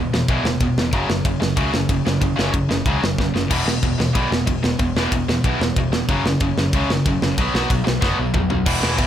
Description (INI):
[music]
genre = punk rock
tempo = 186 BPM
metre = 4/4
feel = straight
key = unclear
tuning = A4 = 441 Hz
[part]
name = tight distorted guitar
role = riff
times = 0.0-9.1 s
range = E2 to B3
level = -20 LUFS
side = equal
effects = distortion
[part]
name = picked electric bass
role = bass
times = 0.0-9.1 s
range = E1 to C#2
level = -24 LUFS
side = equal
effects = none
[part]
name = tight metal drum kit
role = drums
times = 0.1-9.1 s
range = crash cymbal, kick drum, ride cymbal, snare drum, toms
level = -22 LUFS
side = equal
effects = none
[sound]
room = light reverb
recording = none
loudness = -17 LUFS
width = side -10 dB against mid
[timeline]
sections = 0.0-8.7 A section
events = drum fill 3.2-3.5, 8.0-8.7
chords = 0.0 E5; 0.9 F#5; 3.5 E5; 6.1 F#5; 7.4 B5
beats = 0.29 0.61 | 0.94 1.26 1.58 1.90 | 2.23 2.55 2.87 3.19 | 3.52 3.84 4.16 4.48 | 4.81 5.13 5.45 5.77 | 6.09 6.42 6.74 7.06 | 7.38 7.70 8.02 8.35 | 8.67 8.99